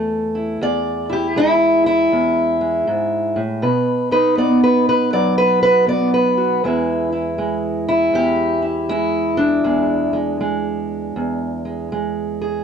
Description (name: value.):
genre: acoustic country blues, solo or duo.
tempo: 80 BPM.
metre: 4/4.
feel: swing 64% on 8ths.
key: E mixolydian.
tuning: A4 = 439 Hz.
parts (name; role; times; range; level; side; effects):
fingerpicked steel-string acoustic guitar; solo; 0.0-12.6 s; E2 to D5; -16 LUFS; equal; none.
room: moderate studio reverb, RT60 1.0 s.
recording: dark, warm production.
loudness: -16 LUFS.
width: side -7 dB against mid.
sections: 0.0-6.6 A section; 6.6-12.6 B section.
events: steel-string acoustic guitar solo 0.0-6.6.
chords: 0.0 A5; 0.6 E; 3.6 B; 6.6 E.